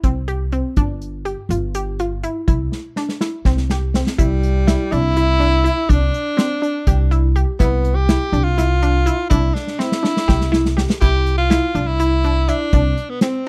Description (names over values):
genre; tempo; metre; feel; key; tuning
progressive instrumental, band music in an uneven meter; 246 BPM (eighths); 7/8; straight; C major; A4 = 440 Hz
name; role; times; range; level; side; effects
analog pluck; arpeggios; 0.0-13.4 s; C4 to G4; -26 LUFS; equal; chorus
upright bass; bass; 0.0-12.9 s; G1 to C2; -21 LUFS; equal; none
unplugged drum kit; drums; 0.0-13.5 s; hi-hat, kick drum, snare drum; -20 LUFS; equal; none
breathy tenor saxophone; melody; 4.2-13.5 s; G3 to G4; -23 LUFS; equal; none
room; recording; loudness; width
studio reverb; dry, close 1970s-style studio recording; -18 LUFS; mono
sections
0.0-4.2 A section; 4.2-13.5 B section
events
drum fill 2.7-4.2, 9.5-11.0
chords
0.0 C5; 0.8 G5; 2.5 Cadd9; 4.2 Em/C; 5.9 Cadd9; 7.6 Em/C; 9.3 Cadd9